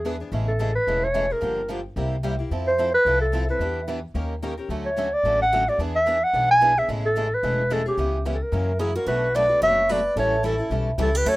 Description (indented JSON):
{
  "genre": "acoustic string swing (jazz manouche)",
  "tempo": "220 BPM",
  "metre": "4/4",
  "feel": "swing 57% on 8ths",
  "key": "A major",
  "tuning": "A4 = 440 Hz",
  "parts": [
    { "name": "mellow clarinet", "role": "melody", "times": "0.0-11.4 s", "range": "G4 to G#5", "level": "-20 LUFS", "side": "equal", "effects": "none" },
    { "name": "picked steel-string acoustic guitar", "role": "accompaniment", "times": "0.0-11.4 s", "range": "B2 to A#4", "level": "-32 LUFS", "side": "left 5 dB", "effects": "none" },
    { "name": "upright bass", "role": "bass", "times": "0.0-11.4 s", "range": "E1 to F#2", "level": "-27 LUFS", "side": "equal", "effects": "none" },
    { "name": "picked swing-style acoustic guitar", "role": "accompaniment", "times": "0.1-11.4 s", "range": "B2 to B4", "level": "-32 LUFS", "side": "right 5 dB", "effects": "none" },
    { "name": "picked acoustic archtop guitar", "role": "second line", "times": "8.8-11.4 s", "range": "E4 to C#5", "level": "-30 LUFS", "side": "right 4 dB", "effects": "none" }
  ],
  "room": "light reverb",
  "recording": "rough home demo mix",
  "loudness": "-20 LUFS",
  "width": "side -19 dB against mid",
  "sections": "0.3-9.1 A section; 9.1-11.4 B section",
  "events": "none",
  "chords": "0.3 Amaj7; 1.4 Gm7; 2.0 C7; 2.5 Fmaj7; 3.6 Em7; 4.2 D#7; 4.7 Dmaj7; 5.8 E7; 6.9 Amaj7; 8.0 C#m7b5; 8.5 F#7; 9.1 Bm9; 10.2 A7"
}